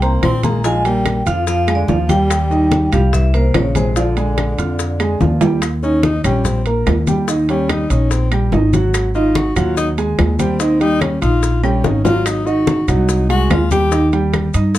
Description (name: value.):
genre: Afro-Cuban jazz.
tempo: 145 BPM.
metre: 4/4.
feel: straight.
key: unclear.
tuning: A4 = 439 Hz.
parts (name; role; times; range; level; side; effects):
vibraphone with medium mallets; melody; 0.0-5.4 s; C5 to C6; -22 LUFS; right 1 dB; none.
breathy tenor saxophone; second line; 0.0-14.1 s; C3 to G4; -21 LUFS; left 4 dB; none.
warm upright piano; accompaniment; 0.0-14.8 s; Eb3 to F6; -19 LUFS; right 2 dB; none.
upright bass; bass; 0.0-14.8 s; Ab1 to G2; -17 LUFS; equal; none.
bongos; percussion; 0.0-14.8 s; none; -26 LUFS; left 6 dB; none.
congas; percussion; 0.0-14.8 s; none; -22 LUFS; left 3 dB; none.
maracas; percussion; 0.0-14.8 s; none; -32 LUFS; left 8 dB; none.
timbales; percussion; 0.0-14.8 s; none; -22 LUFS; right 5 dB; none.
claves; percussion; 0.2-14.5 s; none; -30 LUFS; left 2 dB; none.
room: moderate club reverb, RT60 0.5 s.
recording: dark, warm production.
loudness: -13 LUFS.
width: side -14 dB against mid.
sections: 0.0-5.6 A section; 5.6-14.8 B section.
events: drum fill 5.2-5.6, 11.6-12.3; tenor saxophone solo 5.6-14.8.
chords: 0.0 Fm (rootless); 0.6 Bb5; 2.3 Eb6; 3.1 C5; 4.0 Bb6; 5.6 Eb; 8.9 Ab5; 10.6 Eb9; 12.3 Ab7; 13.9 Eb.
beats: 0.23 | 0.65 1.06 1.48 1.89 | 2.30 2.72 3.13 3.55 | 3.96 4.38 4.79 5.21 | 5.62 6.04 6.45 6.87 | 7.28 7.70 8.11 8.53 | 8.94 9.36 9.77 10.19 | 10.60 11.02 11.43 11.85 | 12.26 12.68 13.09 13.51 | 13.92 14.34 14.75.